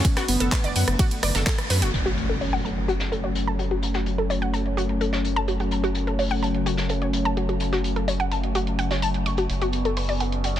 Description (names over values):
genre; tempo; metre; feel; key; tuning
melodic techno; 127 BPM; 4/4; straight; F# minor; A4 = 442 Hz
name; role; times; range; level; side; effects
wide unison lead; melody; 0.0-0.9 s; B3 to C#4; -34 LUFS; right 1 dB; none
warm analog pad; sustained chords; 0.0-10.6 s; D3 to D5; -29 LUFS; left 2 dB; chorus, sidechain pumping
analog pluck; arpeggios; 0.0-10.6 s; F#4 to C#6; -28 LUFS; equal; chorus, sidechain pumping, dub echo
electronic kick drum; drums; 0.0-1.6 s; none; -22 LUFS; equal; none
house drum kit; drums; 0.0-10.6 s; crash cymbal, handclaps, hi-hat, ride cymbal, rim click; -32 LUFS; right 2 dB; low-pass filter on hats, low-pass filter on cymbals, soft clipping on snare, low-pass filter on snare, low-pass filter on room
vintage brush drum kit; drums; 0.0-10.6 s; hi-hat, snare drum; -33 LUFS; left 3 dB; high-pass filter on hats, low-pass filter on hats, high-pass filter on snare, low-pass filter on snare, high-pass filter on room, low-pass filter on room
round analog bass; bass; 0.3-10.6 s; F#1 to F#2; -26 LUFS; equal; sidechain pumping
overtone-sweeping drone; drone; 3.2-10.6 s; F#2 to C#3; -34 LUFS; right 1 dB; chorus, built-in reverb, phaser, sidechain pumping
impact; sound effects; 1.9-3.8 s; none; -32 LUFS; equal; none
room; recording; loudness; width
light reverb; dense, heavily limited modern master; -21 LUFS; side -11 dB against mid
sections
0.0-1.9 A section; 1.9-10.6 B section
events
drop 0.0-1.9; band accent 1.5; impact 1.9-3.8; filter sweep on drum 1.9-10.6; filter sweep on analog synth pad 1.9-10.6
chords
0.0 Bm7/F#; 1.9 F#m; 9.5 Bm/F#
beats
| 0.05 0.52 0.99 1.47 | 1.94 2.41 2.88 3.35 | 3.83 4.30 4.77 5.25 | 5.72 6.19 6.66 7.13 | 7.61 8.08 8.55 9.02 | 9.50 9.97 10.44